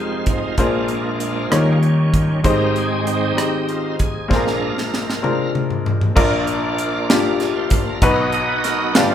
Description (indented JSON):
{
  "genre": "slow gospel",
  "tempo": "64 BPM (dotted quarters)",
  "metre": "6/8",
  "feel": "straight",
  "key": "unclear",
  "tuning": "A4 = 440 Hz",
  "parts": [
    { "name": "clear grand piano", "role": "accompaniment", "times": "0.0-9.1 s", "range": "F1 to F5", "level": "-19 LUFS", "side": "left 2 dB", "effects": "none" },
    { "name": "bright tonewheel organ", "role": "sustained chords", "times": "0.0-9.1 s", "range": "Ab2 to Bb5", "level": "-23 LUFS", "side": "right 2 dB", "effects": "slow rotary speaker, chorus vibrato" },
    { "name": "crisp fusion drum kit", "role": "drums", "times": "0.3-9.1 s", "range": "crash cymbal, hi-hat, kick drum, rim click, snare drum, toms", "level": "-20 LUFS", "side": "equal", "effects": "none" },
    { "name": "twangy electric guitar", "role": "second line", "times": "8.3-9.1 s", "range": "F4 to D#5", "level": "-24 LUFS", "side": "right 8 dB", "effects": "none" }
  ],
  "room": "wet large studio reverb, RT60 1.0 s",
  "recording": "band playing live in one room",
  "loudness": "-16 LUFS",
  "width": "side -9 dB against mid",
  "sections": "0.0-6.2 A section; 6.2-9.1 B section",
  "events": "tonewheel organ solo 0.0-6.2; drum fill 4.3-6.2",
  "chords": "0.0 Fm9; 0.6 Bb9; 1.5 Eb9; 2.4 Abmaj7; 4.3 Bb9; 6.2 Bb; 8.0 B"
}